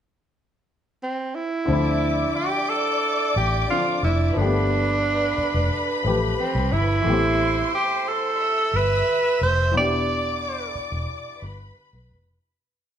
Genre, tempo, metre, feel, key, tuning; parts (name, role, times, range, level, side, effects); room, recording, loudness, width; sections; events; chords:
soul; 89 BPM; 4/4; straight; D dorian; A4 = 440 Hz
breathy tenor saxophone; melody; 1.0-10.7 s; C4 to D5; -23 LUFS; right 3 dB
warm studio string section; second line; 1.7-12.4 s; B4 to E6; -28 LUFS; left 2 dB
clear concert grand piano; accompaniment; 1.7-12.5 s; D3 to B4; -28 LUFS; left 3 dB
vintage muted fingered electric bass; bass; 1.7-12.4 s; E1 to D2; -24 LUFS; equal
wet large studio reverb, RT60 1.0 s; band playing live in one room; -20 LUFS; side -9 dB against mid
0.0-1.7 pickup bar; 1.7-12.4 verse
fade-out 9.7-12.4
0.0 N.C.; 1.7 Dm9; 4.4 G9; 7.1 Am7; 9.7 Em7